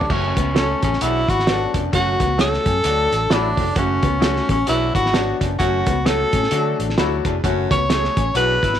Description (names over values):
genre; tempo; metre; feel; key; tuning
uptempo 1960s-style soul; 131 BPM; 4/4; swing 59% on 8ths; F# minor; A4 = 440 Hz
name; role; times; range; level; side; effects
breathy tenor saxophone; melody; 0.0-8.8 s; C#4 to C#5; -20 LUFS; equal; none
cloth-damped thuddy drum kit; drums; 0.0-8.8 s; crash cymbal, hi-hat, kick drum, snare drum, toms; -22 LUFS; right 1 dB; none
bright grand piano; accompaniment; 0.1-8.7 s; F#3 to A4; -26 LUFS; left 11 dB; none
breathy baritone saxophone; riff; 0.1-8.6 s; E2 to A2; -30 LUFS; right 14 dB; none
fingered electric bass; bass; 0.1-8.8 s; E#1 to D3; -24 LUFS; right 1 dB; none
electric guitar through a small old amp; riff; 0.4-8.8 s; B3 to F#4; -27 LUFS; left 11 dB; lush chorus
mellow electric guitar; stabs; 0.5-8.0 s; F#4 to D5; -28 LUFS; right 14 dB; lush chorus
room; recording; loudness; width
light reverb, small room ambience; 1960s-style stereo with parts hard left and right; -16 LUFS; side -10 dB against mid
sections
0.1-8.8 A section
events
none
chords
0.1 F#m; 1.0 Bm; 1.9 F#m; 2.8 D; 3.8 F#m; 4.7 Bm; 5.6 F#m; 6.5 D; 7.4 F#m